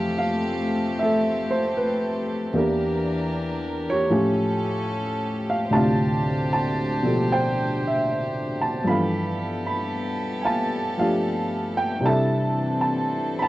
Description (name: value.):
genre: jazz ballad.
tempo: 76 BPM.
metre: 4/4.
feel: swing 68% on 8ths.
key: unclear.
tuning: A4 = 439 Hz.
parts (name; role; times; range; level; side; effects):
warm upright piano; accompaniment; 0.0-13.5 s; D2 to B5; -22 LUFS; equal; none.
warm chamber string section; sustained chords; 0.0-13.5 s; E3 to C5; -28 LUFS; left 1 dB; none.
room: light reverb.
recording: dry, close 1970s-style studio recording.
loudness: -21 LUFS.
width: side -16 dB against mid.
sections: 0.0-13.5 A section.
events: none.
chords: 0.0 Fmaj7; 2.5 Em7b5; 4.1 A7b13; 5.7 Dm7; 8.9 G13; 12.0 C69.